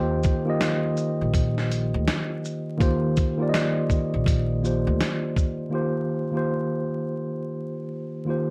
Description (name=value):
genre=lo-fi hip hop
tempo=82 BPM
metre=4/4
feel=swing 64% on 16ths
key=Eb major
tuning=A4 = 439 Hz
part: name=mellow tine electric piano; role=accompaniment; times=0.0-8.5 s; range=Eb3 to G5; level=-27 LUFS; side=equal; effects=low-pass filter, plate reverb
part: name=upright bass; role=bass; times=0.0-5.0 s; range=Bb1 to Eb2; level=-28 LUFS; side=equal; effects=none
part: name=dusty soul sampler-style drum kit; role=drums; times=0.2-5.6 s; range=hi-hat, kick drum, shaker, snare drum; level=-27 LUFS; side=equal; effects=none
room=moderate small room reverb, RT60 0.5 s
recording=vinyl crackle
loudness=-25 LUFS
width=mono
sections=0.0-5.7 A section; 5.7-8.5 B section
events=none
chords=0.0 Eb69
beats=0.61 1.34 2.07 | 2.81 3.54 4.27 5.00 | 5.73 6.46 7.20 7.93